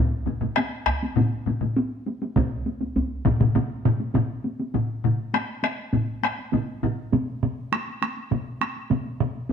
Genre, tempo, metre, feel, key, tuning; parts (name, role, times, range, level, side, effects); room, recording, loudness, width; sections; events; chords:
japanese traditional, taiko drum ensemble; 101 BPM; 4/4; straight
taiko ensemble; percussion; 0.3-9.5 s; -28 LUFS; equal
taiko ensemble; percussion; 0.3-7.0 s; -24 LUFS; left 2 dB
taiko ensemble; percussion; 0.9-3.4, 9.5 s; -27 LUFS; right 2 dB
solo taiko drums; percussion; 2.4-9.3 s; -26 LUFS; right 4 dB
wet stone room reverb, RT60 1.1 s; band playing live in one room; -23 LUFS; side -7 dB against mid
0.0-4.7 A section; 4.7-9.5 B section